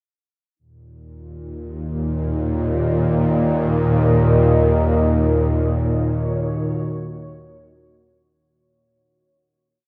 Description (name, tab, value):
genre	dark ambient drone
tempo	free time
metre	none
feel	none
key	Eb minor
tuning	A4 = 440 Hz
part	deep dark ambient pad	sustained chords	2.3-8.3 s	Eb3 to Eb5	-27 LUFS	equal	chorus, built-in reverb
part	bowed-like drone	drone	1.5-8.4 s	Eb2 to Bb2	-20 LUFS	equal	built-in reverb
room	wet huge ambient reverb, RT60 8.7 s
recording	none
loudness	-19 LUFS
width	mono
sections	0.6-8.3 A section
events	fade-in on ambient pad 0.6-8.3; fade-out 4.4-8.3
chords	0.6 Eb5; 4.4 Ebm7